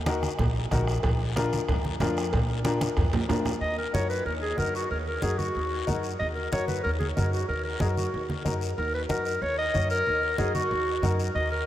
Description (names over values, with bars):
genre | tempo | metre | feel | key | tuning
latin, cumbia | 186 BPM | 4/4 | straight | Eb minor from 3.6 s | A4 = 440 Hz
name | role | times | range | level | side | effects
upright bass | bass | 0.0-11.6 s | Bb1 to Gb2 | -30 LUFS | equal | none
warm upright piano | accompaniment | 0.1-11.3 s | D4 to Db5 | -32 LUFS | left 3 dB | none
bombo | percussion | 0.1-3.6 s | none | -30 LUFS | equal | none
congas | percussion | 0.1-11.7 s | none | -34 LUFS | right 1 dB | none
cowbell and timbales | percussion | 0.1-3.5 s | none | -36 LUFS | right 3 dB | none
guiro | percussion | 0.1-11.7 s | none | -42 LUFS | left 7 dB | none
clear clarinet | melody | 3.6-11.7 s | Gb4 to Eb5 | -28 LUFS | equal | none
room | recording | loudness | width
wet huge ambient reverb, RT60 8.3 s | in a vast, echoing space | -24 LUFS | side -12 dB against mid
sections
0.0-3.6 A section; 3.6-11.7 B section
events
drum fill 2.8-3.6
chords
0.0 Ebm; 1.0 Bb; 3.6 Ebm